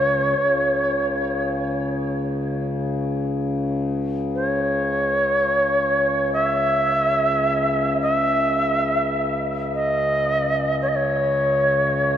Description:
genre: world meditative, free-time meditation music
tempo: free time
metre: none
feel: none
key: C# minor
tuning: A4 = 440 Hz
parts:
  - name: reedy Native American-style cedar flute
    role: melody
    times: 0.0-12.2 s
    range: C#5 to E5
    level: -20 LUFS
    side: equal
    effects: tape echo
  - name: pedal harmonium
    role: drone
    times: 0.0-12.2 s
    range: C#2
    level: -25 LUFS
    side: left 1 dB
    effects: none
room: wet cathedral reverb, RT60 6.1 s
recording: dreamy mix soaked in reverb, cassette tape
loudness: -19 LUFS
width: side -9 dB against mid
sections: 0.0-12.2 A section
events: none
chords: none

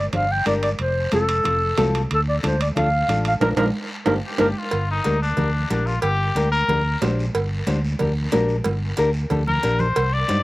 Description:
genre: latin, cumbia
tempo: 183 BPM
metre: 4/4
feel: straight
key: G minor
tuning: A4 = 441 Hz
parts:
  - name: breathy clarinet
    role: melody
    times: 0.0-4.5 s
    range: A4 to G5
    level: -22 LUFS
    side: equal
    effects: slapback echo
  - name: fingered electric bass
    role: bass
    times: 0.0-10.4 s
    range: F1 to G2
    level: -23 LUFS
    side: equal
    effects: none
  - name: nylon-string guitar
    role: accompaniment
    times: 0.1-10.4 s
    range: Bb3 to C5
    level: -25 LUFS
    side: left 3 dB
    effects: none
  - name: congas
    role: percussion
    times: 0.1-10.4 s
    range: none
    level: -30 LUFS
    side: right 1 dB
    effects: none
  - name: guiro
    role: percussion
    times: 0.1-10.4 s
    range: none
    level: -36 LUFS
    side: left 1 dB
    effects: slapback echo
  - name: timbales and cowbell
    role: percussion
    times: 0.1-10.4 s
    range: none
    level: -28 LUFS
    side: right 4 dB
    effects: slapback echo
  - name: clear trumpet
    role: second line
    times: 4.3-7.0, 9.5-10.4 s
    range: D4 to D5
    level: -24 LUFS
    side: left 2 dB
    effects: slapback echo
room: little or no reverb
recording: recorded outdoors, with no room sound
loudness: -18 LUFS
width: side -18 dB against mid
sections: 0.0-4.7 A section; 4.7-10.4 B section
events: band accent 3.4-4.7; drum fill 3.7-4.7, 8.7-10.0; trumpet solo 4.7-10.4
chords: 0.0 Gm; 0.8 F; 2.1 Dm; 3.4 Bb; 4.1 Gm

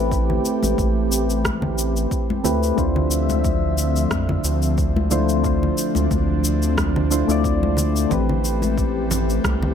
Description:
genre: sunset chillout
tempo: 90 BPM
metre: 4/4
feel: swing 55% on 16ths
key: unclear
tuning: A4 = 440 Hz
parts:
  - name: soft electric-piano-like synth keys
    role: accompaniment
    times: 0.0-9.7 s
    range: A3 to D5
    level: -23 LUFS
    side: moving between left 5 dB and right 2 dB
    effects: chorus, auto-pan, low-pass filter, ping-pong delay
  - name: airy breathy pad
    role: sustained chords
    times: 0.0-9.7 s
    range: D3 to E5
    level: -25 LUFS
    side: equal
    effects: chorus
  - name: round analog bass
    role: bass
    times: 0.0-9.7 s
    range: A1 to F2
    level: -22 LUFS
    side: right 1 dB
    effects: none
  - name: electronic kick drum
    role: drums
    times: 0.1-9.6 s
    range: none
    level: -26 LUFS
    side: right 1 dB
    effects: none
  - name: electronic shaker, rim click and congas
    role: drums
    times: 0.1-9.6 s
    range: none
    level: -27 LUFS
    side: equal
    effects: none
  - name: congas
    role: percussion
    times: 0.3-9.7 s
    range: none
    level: -28 LUFS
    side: left 3 dB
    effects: none
room: light reverb, digital ambience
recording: none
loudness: -18 LUFS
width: side -8 dB against mid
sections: 0.0-9.7 A section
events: filter sweep on synth keys 0.0-9.7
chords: 0.0 Am9; 2.8 Dm9; 8.1 Am9

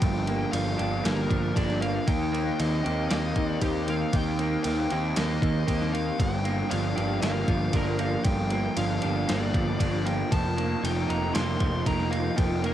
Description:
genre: rock, shoegaze and dream pop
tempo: 116 BPM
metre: 4/4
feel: straight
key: G minor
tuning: A4 = 441 Hz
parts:
  - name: fuzz lead guitar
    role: melody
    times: 0.0-12.7 s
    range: G4 to C6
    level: -34 LUFS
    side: equal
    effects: distortion, cassette tape, tape echo
  - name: direct-recorded clean electric guitar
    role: arpeggios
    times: 0.0-12.7 s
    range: Eb3 to G4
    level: -41 LUFS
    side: right 8 dB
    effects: ensemble chorus, cassette tape, tape echo
  - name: overdriven semi-hollow guitar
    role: riff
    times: 0.0-12.7 s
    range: G2 to G4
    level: -32 LUFS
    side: left 10 dB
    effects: wide subtle chorus, cassette tape
  - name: overdriven semi-hollow guitar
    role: riff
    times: 0.0-12.7 s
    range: G2 to Eb4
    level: -31 LUFS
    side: right 8 dB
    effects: reverse reverb, cassette tape
  - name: fuzz picked electric bass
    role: bass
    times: 0.0-12.7 s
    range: F1 to Eb2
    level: -29 LUFS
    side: equal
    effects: overdrive, tube saturation
  - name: crisp 8-bit digital drum machine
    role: drums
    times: 0.0-12.7 s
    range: kick drum, ride cymbal, snare drum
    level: -30 LUFS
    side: equal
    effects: cassette tape
room: little or no reverb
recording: home recording on cassette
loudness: -24 LUFS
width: side -11 dB against mid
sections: 0.0-12.7 A section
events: none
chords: 0.0 Gm7; 2.1 Eb6; 6.2 Gm7; 10.3 F9sus4

